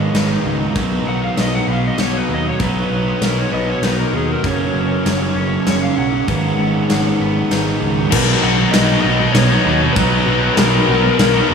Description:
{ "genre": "post-rock", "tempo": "98 BPM", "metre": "3/4", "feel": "straight", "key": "B major", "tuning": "A4 = 440 Hz", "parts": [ { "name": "overdriven slide guitar", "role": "melody", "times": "0.0-11.4 s", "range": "G#4 to F#5", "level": "-23 LUFS", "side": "left 4 dB", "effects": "tape echo" }, { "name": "felt-muted upright piano", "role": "arpeggios", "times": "0.0-11.5 s", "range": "B3 to A#5", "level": "-29 LUFS", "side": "left 2 dB", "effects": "none" }, { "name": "twangy electric guitar", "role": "arpeggios", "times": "0.0-8.1 s", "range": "G#2 to D#4", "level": "-27 LUFS", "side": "left 4 dB", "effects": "lush chorus, tape echo" }, { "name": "fuzz guitar", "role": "riff", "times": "0.0-11.5 s", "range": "F#2 to D#4", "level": "-18 LUFS", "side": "right 4 dB", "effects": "distortion" }, { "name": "growling fingered electric bass", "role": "bass", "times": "0.0-11.5 s", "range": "E#1 to D#2", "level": "-20 LUFS", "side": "equal", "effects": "overdrive" }, { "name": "big rock drum kit", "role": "drums", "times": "0.1-11.3 s", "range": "crash cymbal, kick drum, ride cymbal, snare drum", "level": "-21 LUFS", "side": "left 2 dB", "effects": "none" }, { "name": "tight distorted guitar", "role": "riff", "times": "8.1-11.5 s", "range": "B2 to D#4", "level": "-18 LUFS", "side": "left 9 dB", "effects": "distortion" } ], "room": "wet huge ambient reverb, RT60 7.2 s", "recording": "dreamy mix soaked in reverb, studio ambience", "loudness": "-14 LUFS", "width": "side -6 dB against mid", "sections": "0.0-8.1 A section; 8.1-11.5 B section", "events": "none", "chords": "0.0 G#m7; 0.8 Bmaj7; 4.4 F#; 6.3 G#m7; 8.1 Bmaj7", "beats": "0.15 | 0.76 1.38 1.99 | 2.60 3.22 3.83 | 4.45 5.06 5.68 | 6.29 6.90 7.52 | 8.13 8.74 9.36 | 9.97 10.58 11.20" }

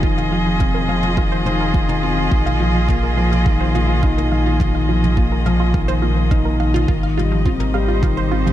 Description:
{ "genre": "piano and strings electronica", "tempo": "105 BPM", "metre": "4/4", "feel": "straight", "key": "unclear", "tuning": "A4 = 443 Hz", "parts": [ { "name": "muted string quartet", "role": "sustained chords", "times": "0.0-8.5 s", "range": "F3 to Eb5", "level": "-23 LUFS", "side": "equal", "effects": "sidechain pumping" }, { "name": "wide unison pluck", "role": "arpeggios", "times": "0.0-8.5 s", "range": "F3 to F5", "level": "-27 LUFS", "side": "right 4 dB", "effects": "sidechain pumping, ping-pong delay" }, { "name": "felt-muted upright piano", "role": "riff", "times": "0.0-8.5 s", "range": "Eb3 to Eb4", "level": "-20 LUFS", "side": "left 3 dB", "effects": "ping-pong delay" }, { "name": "warm sub bass", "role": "bass", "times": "0.0-8.5 s", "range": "F1 to Bb1", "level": "-20 LUFS", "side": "equal", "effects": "sidechain pumping" }, { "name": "electronic kick drum", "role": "drums", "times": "0.0-8.1 s", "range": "none", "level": "-19 LUFS", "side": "equal", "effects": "none" }, { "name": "toms", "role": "drums", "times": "0.2-8.5 s", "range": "none", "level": "-32 LUFS", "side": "left 1 dB", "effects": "none" } ], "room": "light reverb, small room ambience", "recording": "none", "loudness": "-15 LUFS", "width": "side -12 dB against mid", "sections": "0.0-8.5 A section", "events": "none", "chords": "0.0 Fm7; 2.3 Bb7sus4; 6.9 Abmaj7", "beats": "| 0.03 0.60 1.18 1.75 | 2.32 2.89 3.46 4.03 | 4.60 5.17 5.75 6.32 | 6.89 7.46 8.03" }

